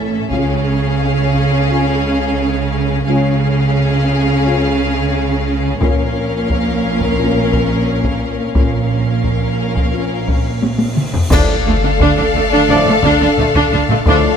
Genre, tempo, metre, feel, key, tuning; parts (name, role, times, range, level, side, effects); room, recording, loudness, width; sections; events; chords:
cinematic, epic orchestral film score; 87 BPM; 4/4; straight; D harmonic minor; A4 = 439 Hz
rich symphonic violin section; melody; 0.0-14.4 s; E5 to E#5; -24 LUFS; left 5 dB
rich symphonic violin section; second line; 0.0-14.4 s; G#4 to Bb4; -22 LUFS; left 3 dB
clear symphonic viola section; accompaniment; 0.0-14.2 s; A3 to D4; -21 LUFS; right 1 dB
rich symphonic cello section; bass; 0.0-14.1 s; A2 to D3; -19 LUFS; right 2 dB
warm symphonic double bass section; bass; 0.0-14.1 s; A1 to D2; -20 LUFS; right 3 dB
dark French horn section; sustained chords; 0.3-14.3 s; A3 to A4; -23 LUFS; left 6 dB
taiko ensemble; drums; 0.3-1.7, 5.8-14.4 s; -18 LUFS; left 1 dB
cymbal swell, clash cymbals and concert bass drum; percussion; 8.6-12.7 s; -23 LUFS; left 1 dB
cymbal swell and impact; sound effects; 10.4-14.1 s; -28 LUFS; left 1 dB
brilliant trombone section; sustained chords; 11.3-14.3 s; A2 to F3; -25 LUFS; right 4 dB
clear symphonic string section; sustained chords; 11.3-14.4 s; A3 to F5; -23 LUFS; left 2 dB
dark trumpet; stabs; 11.3-14.3 s; D5; -21 LUFS; right 2 dB
moderate scoring stage reverb, RT60 1.8 s; -12 LUFS; side -7 dB against mid
0.0-11.3 A section; 11.3-14.4 B section
build-up 0.0-11.3; cymbal swell 10.4-11.3; drum fill 10.6-11.3; band accent 11.3-12.0; impact 11.3-14.1
0.3 C#; 5.8 Bbm; 11.3 Dm